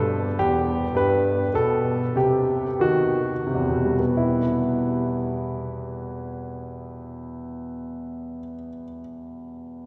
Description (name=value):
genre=classical, baroque-style suite movement for grand piano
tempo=43-55 BPM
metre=4/4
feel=rubato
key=E minor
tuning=A4 = 440 Hz
part: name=warm concert grand piano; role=solo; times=0.0-9.9 s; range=E2 to B4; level=-25 LUFS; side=equal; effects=none
room=wet cathedral reverb, RT60 5.6 s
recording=recorded in a church or concert hall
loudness=-23 LUFS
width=mono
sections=0.0-4.1 A section; 4.1-9.5 B section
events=slowing down 0.0-4.1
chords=0.0 Em; 1.5 B; 4.1 Em